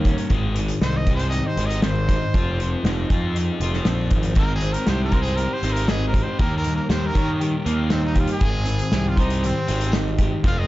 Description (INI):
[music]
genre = indie rock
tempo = 118 BPM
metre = 4/4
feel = straight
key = Ab major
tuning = A4 = 439 Hz
[part]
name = electric guitar through a small old amp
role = riff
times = 0.0-10.7 s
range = Eb3 to Db5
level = -29 LUFS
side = right 4 dB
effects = lush chorus
[part]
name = scooped high-gain guitar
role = riff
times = 0.0-10.7 s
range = Ab2 to F4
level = -28 LUFS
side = left 4 dB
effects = distortion
[part]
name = fuzz picked electric bass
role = bass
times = 0.0-10.7 s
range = F1 to Eb3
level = -23 LUFS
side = equal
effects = overdrive
[part]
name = loose indie drum kit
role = drums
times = 0.0-10.6 s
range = hi-hat, kick drum, snare drum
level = -23 LUFS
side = equal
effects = none
[part]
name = brilliant trumpet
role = melody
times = 0.8-10.7 s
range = C4 to F5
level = -29 LUFS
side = equal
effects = digital delay
[part]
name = tambourine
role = percussion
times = 4.9-10.0 s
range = none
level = -43 LUFS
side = right 5 dB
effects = none
[sound]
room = little or no reverb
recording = dark, warm production, nothing above 7.6 kHz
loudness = -19 LUFS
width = side -17 dB against mid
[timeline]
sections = 0.0-10.7 A section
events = trumpet solo 0.0-10.7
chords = 0.3 Abmaj7; 2.3 Fm7; 4.4 Abmaj7; 6.4 Eb7; 8.4 Abmaj7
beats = | 0.32 0.83 1.33 1.84 | 2.35 2.85 3.36 3.87 | 4.38 4.88 5.39 5.89 | 6.40 6.91 7.41 7.92 | 8.42 8.93 9.43 9.94 | 10.44